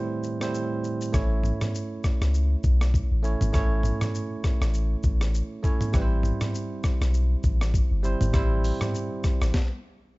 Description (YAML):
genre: afrobeats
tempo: 100 BPM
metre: 4/4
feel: swing 58% on 16ths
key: unclear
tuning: A4 = 441 Hz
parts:
  - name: barky tine electric piano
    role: accompaniment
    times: 0.0-9.6 s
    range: A2 to C#5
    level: -30 LUFS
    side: right 3 dB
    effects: none
  - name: boom bap sampler-style drum kit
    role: drums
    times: 0.2-9.7 s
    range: hi-hat, kick drum, rim click, shaker, snare drum, toms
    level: -26 LUFS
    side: equal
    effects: none
  - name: punchy sub bass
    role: bass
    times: 1.1-9.5 s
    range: G1 to C#2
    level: -23 LUFS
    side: equal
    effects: none
room: little or no reverb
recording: dark, warm production, nothing above 7.7 kHz, faint mains hum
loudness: -22 LUFS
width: side -22 dB against mid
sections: 0.0-1.1 A section; 1.1-10.2 B section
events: break 0.0-1.1; stop 9.5-10.2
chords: 0.0 C/A; 1.1 A; 5.9 C